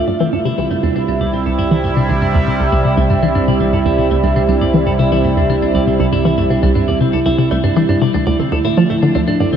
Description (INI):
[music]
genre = ambient, sequencer-driven space music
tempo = 119 BPM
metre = 4/4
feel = straight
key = unclear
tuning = A4 = 443 Hz
[part]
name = sweeping resonant pad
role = sustained chords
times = 0.0-9.6 s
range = C3 to E4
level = -15 LUFS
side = right 2 dB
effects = chorus, shimmer reverb
[part]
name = clean electric guitar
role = arpeggios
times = 0.0-9.6 s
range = A3 to D5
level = -24 LUFS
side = left 2 dB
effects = auto-pan, tape echo, shimmer reverb
[part]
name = analog drone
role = bass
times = 1.1-9.6 s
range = C2 to D2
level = -24 LUFS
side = equal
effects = chorus
[part]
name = hollow square pluck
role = riff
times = 0.1-9.6 s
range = C2 to F3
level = -16 LUFS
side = equal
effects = chorus, phaser, tape echo
[sound]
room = moderate huge ambient reverb, RT60 9.4 s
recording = cassette tape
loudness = -12 LUFS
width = side -8 dB against mid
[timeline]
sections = 0.0-9.6 A section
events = fade-in on clean electric guitar 0.0-9.6; filter sweep on synth arpeggio sound 0.0-9.6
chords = 0.1 C; 8.1 Dmadd9